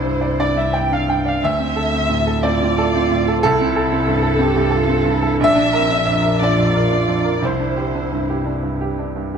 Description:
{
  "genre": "neoclassical piano and strings",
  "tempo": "59 BPM (dotted quarters)",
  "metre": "6/8",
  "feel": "rubato",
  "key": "unclear",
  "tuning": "A4 = 440 Hz",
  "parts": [
    { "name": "muted chamber violin section", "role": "melody", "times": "0.0-8.5 s", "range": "A4 to G5", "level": "-22 LUFS", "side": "equal", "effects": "none" },
    { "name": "muted cello", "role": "second line", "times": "0.0-9.0 s", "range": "C4 to G4", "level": "-24 LUFS", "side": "right 4 dB", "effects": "none" },
    { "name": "bright baby grand piano", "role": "accompaniment", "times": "0.0-9.4 s", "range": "Bb1 to G5", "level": "-19 LUFS", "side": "right 1 dB", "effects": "none" },
    { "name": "muted double bass", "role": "bass", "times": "0.0-9.4 s", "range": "Bb1 to D2", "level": "-22 LUFS", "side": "left 1 dB", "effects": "none" }
  ],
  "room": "moderate concert hall reverb, RT60 2.4 s",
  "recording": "minimal, uncompressed stereo recording",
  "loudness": "-15 LUFS",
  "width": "side -7 dB against mid",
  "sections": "0.0-9.4 A section",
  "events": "none",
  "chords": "0.0 Cadd9; 1.4 Dm7; 3.4 Am7/C; 5.4 Bb; 7.4 Cadd9",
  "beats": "0.40 | 1.43 2.43 | 3.42 4.41 | 5.42 6.42 | 7.45 8.49"
}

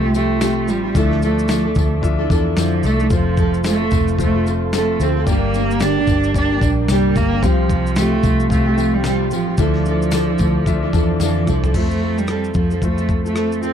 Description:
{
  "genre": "acoustic pop",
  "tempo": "111 BPM",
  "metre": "4/4",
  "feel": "swing 60% on 16ths",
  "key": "F major",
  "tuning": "A4 = 439 Hz",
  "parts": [
    { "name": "rich cello", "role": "melody", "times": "0.0-13.7 s", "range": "E3 to D4", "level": "-20 LUFS", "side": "right 3 dB", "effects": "tape echo" },
    { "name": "clear concert grand piano", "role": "accompaniment", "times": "0.0-13.7 s", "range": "A3 to A5", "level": "-29 LUFS", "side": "left 9 dB", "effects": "none" },
    { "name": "nylon-string guitar", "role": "accompaniment", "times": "0.0-13.7 s", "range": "G2 to A4", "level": "-21 LUFS", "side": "left 1 dB", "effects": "double-tracked left and right" },
    { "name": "mellow tonewheel organ", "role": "sustained chords", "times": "0.0-11.7 s", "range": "F3 to D6", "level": "-31 LUFS", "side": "left 1 dB", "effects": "fast rotary speaker" },
    { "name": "vintage muted picked electric bass", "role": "bass", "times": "0.0-13.7 s", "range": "F1 to F2", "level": "-20 LUFS", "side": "left 1 dB", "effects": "none" },
    { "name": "dusty soul sampler-style drum kit", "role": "drums", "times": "0.1-13.7 s", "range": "crash cymbal, kick drum, rim click, shaker, snare drum, toms", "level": "-21 LUFS", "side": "equal", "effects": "none" },
    { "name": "tambourine", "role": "percussion", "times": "0.1-11.6 s", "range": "none", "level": "-34 LUFS", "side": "left 14 dB", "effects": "none" }
  ],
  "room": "little or no reverb",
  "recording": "dry, close 1970s-style studio recording",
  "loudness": "-15 LUFS",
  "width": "side -8 dB against mid",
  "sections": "0.0-11.7 A section; 11.7-13.7 B section",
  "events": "grand piano fill 10.7-11.7; drum fill 11.2-11.7",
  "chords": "0.0 Csus4; 0.9 Dmadd9; 3.1 F; 5.3 Gm; 7.4 Csus4; 9.6 Dmadd9; 11.7 F",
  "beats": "0.41 | 0.95 1.49 2.03 2.57 | 3.11 3.65 4.19 4.73 | 5.27 5.81 6.35 6.88 | 7.42 7.96 8.50 9.04 | 9.58 10.12 10.66 11.20 | 11.74 12.28 12.82 13.36"
}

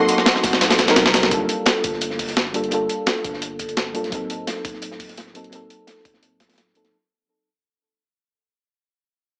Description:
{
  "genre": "liquid drum and bass",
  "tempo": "171 BPM",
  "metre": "4/4",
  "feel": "straight",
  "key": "G minor",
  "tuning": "A4 = 440 Hz",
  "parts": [
    { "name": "trumpet with bucket mute", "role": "melody", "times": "0.0-1.0 s", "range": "F#4", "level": "-31 LUFS", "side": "equal", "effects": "none" },
    { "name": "mellow FM electric piano", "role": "accompaniment", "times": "0.0-6.9 s", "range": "F#3 to Bb4", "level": "-26 LUFS", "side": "equal", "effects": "chorus, cassette tape, digital delay" },
    { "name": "rich symphonic string section", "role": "sustained chords", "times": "0.0-1.3 s", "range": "Bb3 to C6", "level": "-28 LUFS", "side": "equal", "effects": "sidechain pumping" },
    { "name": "warm sub bass", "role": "bass", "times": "0.0-6.9 s", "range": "D1 to C2", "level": "-40 LUFS", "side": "equal", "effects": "none" },
    { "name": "breakbeat sampler-style drum kit", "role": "drums", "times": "0.1-6.9 s", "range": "hi-hat, shaker, snare drum", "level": "-22 LUFS", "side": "equal", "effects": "none" },
    { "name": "crunchy breakbeat drum kit", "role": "drums", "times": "0.1-6.9 s", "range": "hi-hat, snare drum", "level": "-30 LUFS", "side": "equal", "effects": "high-pass filter on hats, high-pass filter on snare, high-pass filter on room" },
    { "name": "electronic kick drum", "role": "drums", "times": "0.4-6.5 s", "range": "none", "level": "-36 LUFS", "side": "equal", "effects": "none" }
  ],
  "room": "light reverb, small room ambience",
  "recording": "small speaker sound",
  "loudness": "-20 LUFS",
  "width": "mono",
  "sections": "0.0-1.3 A section; 1.3-6.9 B section",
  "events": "drop 0.0-1.3; drum fill 0.6-1.3; fade-out 1.3-6.9",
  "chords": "0.0 D7b9b13; 1.3 Gm9; 4.1 D7b9b13",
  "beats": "0.26 0.61 0.96 | 1.31 1.66 2.01 2.37 | 2.72 3.07 3.42 3.77 | 4.12 4.47 4.82 5.17 | 5.52 5.87 6.22 6.58"
}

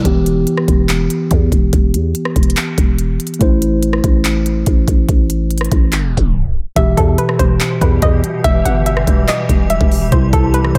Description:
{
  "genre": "hip hop, trap",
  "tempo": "143 BPM",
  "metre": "4/4",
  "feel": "half-time",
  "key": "E minor",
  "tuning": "A4 = 439 Hz",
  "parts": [
    { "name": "mellow tine electric piano", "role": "accompaniment", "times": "0.0-10.8 s", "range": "B2 to C5", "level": "-20 LUFS", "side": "equal", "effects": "none" },
    { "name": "growling 808-style bass", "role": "bass", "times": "0.1-10.8 s", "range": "E1 to E2", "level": "-19 LUFS", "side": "equal", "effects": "none" },
    { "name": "trap drum kit", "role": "drums", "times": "0.1-10.8 s", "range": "handclaps, hi-hat, kick drum, rim click", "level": "-18 LUFS", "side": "equal", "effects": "none" },
    { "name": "hollow square pluck", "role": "melody", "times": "6.8-10.8 s", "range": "A4 to F#5", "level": "-21 LUFS", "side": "equal", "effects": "chorus, analog delay" },
    { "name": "granular cloud pad", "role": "sustained chords", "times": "7.5-10.8 s", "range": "B2 to G4", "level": "-26 LUFS", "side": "equal", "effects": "built-in reverb, phaser" }
  ],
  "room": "moderate plate reverb, RT60 2.3 s",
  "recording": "dreamy mix soaked in reverb, tape stop",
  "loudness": "-14 LUFS",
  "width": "mono",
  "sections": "0.0-6.8 A section; 6.8-10.8 B section",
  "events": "tape stop 5.9-6.8",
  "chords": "0.1 Em; 3.4 Am; 6.8 Em; 10.1 C",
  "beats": "| 0.05 0.47 0.89 1.31 | 1.73 2.15 2.57 2.99 | 3.41 3.83 4.25 4.67 | 5.09 5.51 5.92 6.34 | 6.76 7.18 7.60 8.02 | 8.44 8.86 9.28 9.70 | 10.12 10.54"
}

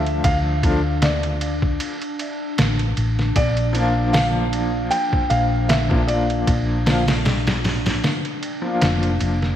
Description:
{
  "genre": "trip hop",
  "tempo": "77 BPM",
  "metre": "4/4",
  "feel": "swing 55% on 16ths",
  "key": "unclear",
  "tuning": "A4 = 443 Hz",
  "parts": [
    { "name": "felt-muted upright piano", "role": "melody", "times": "0.0-9.2 s", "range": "D5 to G5", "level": "-26 LUFS", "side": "equal", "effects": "tape echo" },
    { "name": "clear upright piano", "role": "accompaniment", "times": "0.0-9.6 s", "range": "F3 to F4", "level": "-24 LUFS", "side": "left 1 dB", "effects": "tremolo, tape echo" },
    { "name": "warbly tape-like pad", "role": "sustained chords", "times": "0.0-9.6 s", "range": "D4", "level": "-29 LUFS", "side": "left 3 dB", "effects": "chorus, built-in reverb" },
    { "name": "hollow-body short-scale fingered electric bass", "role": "bass", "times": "0.0-9.6 s", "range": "F1 to D2", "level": "-22 LUFS", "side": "equal", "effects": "none" },
    { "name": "trip hop sampler-style drum kit", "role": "drums", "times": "0.1-9.6 s", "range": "hi-hat, kick drum, ride cymbal, snare drum", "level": "-22 LUFS", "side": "equal", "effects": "gated reverb" }
  ],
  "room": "light reverb",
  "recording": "bright 1980s-style digital production, vinyl crackle",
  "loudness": "-18 LUFS",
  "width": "side -10 dB against mid",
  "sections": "0.0-9.6 A section",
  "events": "none",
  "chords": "0.0 Dm; 3.4 Bb",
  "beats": "| 0.24 1.02 1.80 2.58 | 3.36 4.14 4.92 5.70 | 6.48 7.26 8.04 8.82"
}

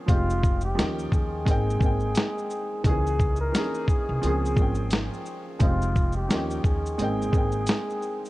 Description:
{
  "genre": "lo-fi hip hop",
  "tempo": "87 BPM",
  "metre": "4/4",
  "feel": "swing 58% on 16ths",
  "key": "Ab major",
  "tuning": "A4 = 441 Hz",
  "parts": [
    { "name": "warm upright piano", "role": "accompaniment", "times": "0.0-8.3 s", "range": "Eb3 to G5", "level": "-30 LUFS", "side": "right 1 dB", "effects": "none" },
    { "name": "breathy flugelhorn", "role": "melody", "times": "0.1-8.3 s", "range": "F4 to Bb4", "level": "-30 LUFS", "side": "equal", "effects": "none" },
    { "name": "upright bass", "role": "bass", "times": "0.1-7.7 s", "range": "F1 to Eb2", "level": "-28 LUFS", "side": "equal", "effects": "none" },
    { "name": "dusty soul sampler-style drum kit", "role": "drums", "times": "0.1-8.3 s", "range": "hi-hat, kick drum, shaker, snare drum", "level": "-24 LUFS", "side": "equal", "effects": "none" }
  ],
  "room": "studio ambience",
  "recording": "cassette tape",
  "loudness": "-22 LUFS",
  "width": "side -18 dB against mid",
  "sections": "0.0-8.3 A section",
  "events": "none",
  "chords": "0.1 Fm7; 0.8 Eb7; 1.5 Abmaj7; 2.8 Dbm6; 4.2 Bbm7; 5.6 Fm7; 6.3 Eb7; 7.0 Abmaj7",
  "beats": "| 0.09 0.78 1.47 2.16 | 2.85 3.54 4.23 4.92 | 5.61 6.29 6.99 7.67"
}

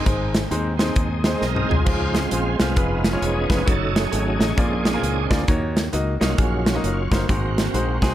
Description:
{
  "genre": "uptempo gospel",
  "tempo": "133 BPM",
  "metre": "4/4",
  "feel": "swing 62% on 8ths",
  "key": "Db major",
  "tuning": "A4 = 442 Hz",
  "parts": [
    { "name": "bright tonewheel organ", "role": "sustained chords", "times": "0.0-8.1 s", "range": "F3 to C5", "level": "-26 LUFS", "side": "right 3 dB", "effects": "slow rotary speaker, overdrive, chorus vibrato" },
    { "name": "clear grand piano", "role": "accompaniment", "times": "0.1-8.1 s", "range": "Ab2 to Eb5", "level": "-26 LUFS", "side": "left 2 dB", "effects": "none" },
    { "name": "modern bright fingered electric bass", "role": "bass", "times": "0.1-8.1 s", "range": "Fb1 to Eb2", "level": "-25 LUFS", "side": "equal", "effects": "none" },
    { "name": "modern studio drum kit", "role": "drums", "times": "0.1-8.1 s", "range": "crash cymbal, hi-hat, kick drum, snare drum, toms", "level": "-22 LUFS", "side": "equal", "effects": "none" },
    { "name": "clean electric guitar", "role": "second line", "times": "8.0-8.1 s", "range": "C4 to Ab4", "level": "-27 LUFS", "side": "right 4 dB", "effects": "none" }
  ],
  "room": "light reverb, studio reverb",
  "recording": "none",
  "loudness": "-18 LUFS",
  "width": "side -12 dB against mid",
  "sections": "0.1-1.9 A section; 1.9-8.1 B section",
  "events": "tonewheel organ solo 0.1-1.9, 1.9-8.1; drum fill 1.4-1.9",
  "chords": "0.1 Ab; 1.9 Dbmaj7; 2.8 Db7/F; 3.7 Gbm6; 4.6 Bb7; 5.5 Ebm7; 7.3 Ab7",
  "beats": "| 0.06 0.51 0.96 1.41 | 1.86 2.32 2.77 3.22 | 3.67 4.12 4.58 5.03 | 5.48 5.93 6.38 6.84 | 7.29 7.74"
}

